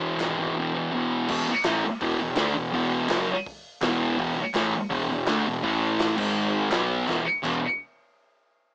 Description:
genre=garage rock duo or trio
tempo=165 BPM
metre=4/4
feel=straight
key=E mixolydian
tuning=A4 = 440 Hz
part: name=thick fuzz guitar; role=riff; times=0.0-7.6 s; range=E2 to D4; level=-24 LUFS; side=equal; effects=distortion
part: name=fuzz fingered electric bass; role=bass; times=0.0-7.6 s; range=E1 to D2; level=-33 LUFS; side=equal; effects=overdrive
part: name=vintage drum kit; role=drums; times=0.2-7.5 s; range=crash cymbal, hi-hat, kick drum, snare drum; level=-32 LUFS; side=equal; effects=cassette tape
part: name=group handclap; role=percussion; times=0.2-7.6 s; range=none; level=-34 LUFS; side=equal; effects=none
room=light reverb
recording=home recording on cassette, small speaker sound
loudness=-23 LUFS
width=side -24 dB against mid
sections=0.0-1.3 A section; 1.3-7.1 B section; 7.1-8.5 C section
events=none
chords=0.0 E; 1.3 E5; 5.6 A5; 6.2 G#5; 6.7 B5; 7.1 E5

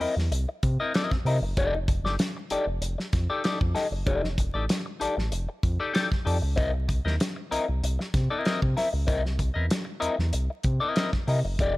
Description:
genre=funk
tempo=96 BPM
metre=4/4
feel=straight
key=unclear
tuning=A4 = 440 Hz
part: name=electric guitar at the edge of break-up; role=accompaniment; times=0.0-11.7 s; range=A3 to E5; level=-28 LUFS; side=left 3 dB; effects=wah
part: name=round analog bass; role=bass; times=0.0-11.8 s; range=F1 to C3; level=-27 LUFS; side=equal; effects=none
part: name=warm soul drum kit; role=drums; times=0.0-11.7 s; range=hi-hat, kick drum, snare drum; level=-28 LUFS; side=equal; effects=none
room=small room ambience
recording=vinyl crackle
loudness=-24 LUFS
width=side -19 dB against mid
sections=0.0-11.8 A section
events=none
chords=0.0 C7#9; 1.6 F13; 6.6 C7#9

